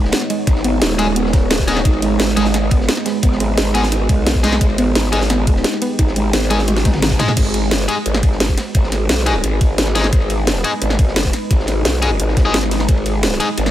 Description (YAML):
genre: dark technical drum and bass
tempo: 174 BPM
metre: 4/4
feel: straight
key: G# harmonic minor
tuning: A4 = 442 Hz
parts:
  - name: deep dark ambient pad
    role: sustained chords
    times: 0.0-13.7 s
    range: G#3 to C#5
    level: -23 LUFS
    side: right 2 dB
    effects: chorus, built-in reverb, sidechain pumping
  - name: growl bass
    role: bass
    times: 0.0-13.7 s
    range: D#1 to B1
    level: -19 LUFS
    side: equal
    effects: chorus, overdrive, sidechain pumping
  - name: crunchy breakbeat drum kit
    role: drums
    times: 0.0-13.7 s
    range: ride cymbal, snare drum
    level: -31 LUFS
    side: equal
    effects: none
  - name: soft round pluck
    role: arpeggios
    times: 0.1-7.3 s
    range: G#3 to D#4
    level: -22 LUFS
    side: right 3 dB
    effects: chorus, vintage 12-bit sampler grit, sidechain pumping, tape echo
  - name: drum and bass drum kit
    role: drums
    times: 0.1-13.7 s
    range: crash cymbal, hi-hat, ride cymbal, snare drum, toms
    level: -20 LUFS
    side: equal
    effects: none
  - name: electronic kick drum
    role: drums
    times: 0.5-13.0 s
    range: none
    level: -15 LUFS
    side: equal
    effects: none
  - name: distorted electric guitar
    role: stabs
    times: 1.0-13.5 s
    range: G#3 to G#4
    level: -23 LUFS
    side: left 3 dB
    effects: overdrive, tape echo
room: digital ambience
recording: none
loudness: -14 LUFS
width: side -12 dB against mid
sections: 0.0-7.4 A section; 7.4-13.7 A section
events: drop 0.0-7.4, 7.4-13.7; drum fill 6.7-7.4; band accent 7.0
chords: 0.0 G#m